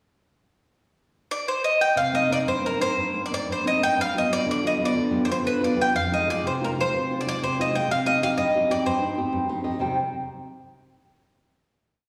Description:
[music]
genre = italian folk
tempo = 122 BPM (dotted quarters)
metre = 6/8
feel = straight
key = C minor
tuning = A4 = 440 Hz
[part]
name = bowl-back mandolin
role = melody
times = 1.3-9.5 s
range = Bb4 to G5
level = -25 LUFS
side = equal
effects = none
[part]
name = nylon-string guitar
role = accompaniment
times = 2.0-10.0 s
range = F2 to G5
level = -28 LUFS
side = equal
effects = none
[sound]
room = wet scoring stage reverb, RT60 1.6 s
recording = recorded in a church or concert hall, studio reverb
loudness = -24 LUFS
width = mono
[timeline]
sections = 1.0-2.0 pickup bar; 2.0-9.8 A section; 9.8-10.8 final chord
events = nylon-string guitar fill 9.3-9.8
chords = 1.0 N.C.; 2.0 Cm7; 4.0 G7; 5.9 Fm7; 7.9 Cm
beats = | 0.96 1.46 | 1.96 2.47 | 2.97 3.47 | 3.96 4.46 | 4.95 5.45 | 5.94 6.43 | 6.92 7.40 | 7.88 8.37 | 8.85 9.33 | 9.82

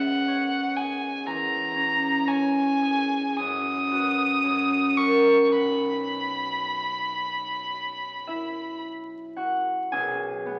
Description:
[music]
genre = classical, romantic duo for violin and harp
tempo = 51-62 BPM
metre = 4/4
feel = rubato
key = B major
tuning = A4 = 440 Hz
[part]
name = rich violin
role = melody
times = 0.0-8.8 s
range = F#5 to D#6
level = -28 LUFS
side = equal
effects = none
[part]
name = concert harp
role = accompaniment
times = 0.0-10.6 s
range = B1 to G#5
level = -27 LUFS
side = equal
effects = none
[sound]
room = wet recital hall reverb, RT60 1.5 s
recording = very old 78 rpm record, vinyl crackle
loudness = -25 LUFS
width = mono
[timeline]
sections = 0.0-9.9 A section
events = none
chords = 0.0 C#5; 1.3 C#m/E; 3.4 B/F#; 4.4 F#; 5.5 B; 9.9 B5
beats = 0.28 | 1.26 2.27 3.39 4.44 | 5.53 6.64 7.74 8.83 | 9.93

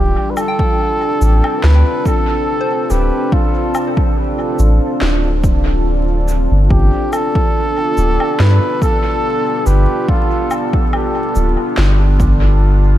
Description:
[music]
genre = ambient dub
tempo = 71 BPM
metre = 4/4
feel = swing 54% on 16ths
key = D dorian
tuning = A4 = 440 Hz
[part]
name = trumpet with bucket mute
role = melody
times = 0.0-11.7 s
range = F4 to B4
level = -20 LUFS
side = equal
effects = tape echo
[part]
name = deep dark ambient pad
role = sustained chords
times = 0.0-13.0 s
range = B3 to D5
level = -20 LUFS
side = equal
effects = chorus, built-in reverb
[part]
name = soft dub sub bass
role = bass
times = 0.0-13.0 s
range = D1 to G2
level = -12 LUFS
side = equal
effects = none
[part]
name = electronic cabasa, woodblock and snare drum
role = drums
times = 0.4-12.4 s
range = none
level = -26 LUFS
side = left 1 dB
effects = dub echo
[part]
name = soft synth bell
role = arpeggios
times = 0.5-6.7 s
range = C5 to G5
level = -29 LUFS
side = left 2 dB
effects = chorus, phaser, tape echo
[part]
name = electronic kick drum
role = drums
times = 0.6-12.4 s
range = none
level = -16 LUFS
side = equal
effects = none
[sound]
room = little or no reverb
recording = vinyl crackle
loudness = -12 LUFS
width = side -13 dB against mid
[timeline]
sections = 0.0-13.0 A section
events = none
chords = 0.0 Dm7; 6.7 G7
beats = 0.79 1.64 2.48 | 3.33 4.17 5.01 5.86 | 6.71 7.55 8.39 9.24 | 10.09 10.93 11.78 12.62

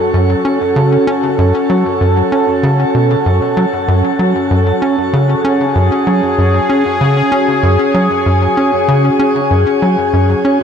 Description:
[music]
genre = ambient, sequencer-driven space music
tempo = 96 BPM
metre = 4/4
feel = straight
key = F# minor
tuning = A4 = 441 Hz
[part]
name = sweeping resonant pad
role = sustained chords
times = 0.0-10.6 s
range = C#4 to A4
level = -13 LUFS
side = equal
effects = chorus
[part]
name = tight sequencer bass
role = riff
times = 0.1-10.6 s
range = F#2 to C#4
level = -13 LUFS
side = left 1 dB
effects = ping-pong delay
[sound]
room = wet shimmer reverb, RT60 7.5 s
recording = cassette tape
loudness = -10 LUFS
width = side -7 dB against mid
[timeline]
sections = 0.0-10.6 A section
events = none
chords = 0.0 F#m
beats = 0.13 0.76 | 1.38 2.01 2.63 3.26 | 3.88 4.51 5.13 5.76 | 6.38 7.01 7.63 8.26 | 8.88 9.51 10.13

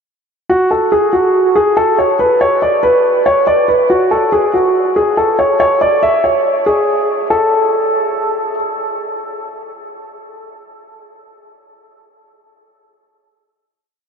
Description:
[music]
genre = hip hop, drill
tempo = 141 BPM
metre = 4/4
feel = half-time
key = unclear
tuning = A4 = 440 Hz
[part]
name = dark baby grand piano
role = solo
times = 0.5-8.5 s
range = F#4 to E5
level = -11 LUFS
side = equal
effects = diffuse ambient delay
[sound]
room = wet huge ambient reverb, RT60 7.0 s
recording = dreamy mix soaked in reverb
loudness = -11 LUFS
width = side -6 dB against mid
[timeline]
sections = 0.5-7.3 breakdown; 7.3-10.7 final note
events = none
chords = none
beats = | 0.49 0.92 1.34 1.77 | 2.19 2.62 3.04 3.47 | 3.90 4.32 4.75 5.17 | 5.60 6.02 6.45 6.88 | 7.30 7.73 8.15

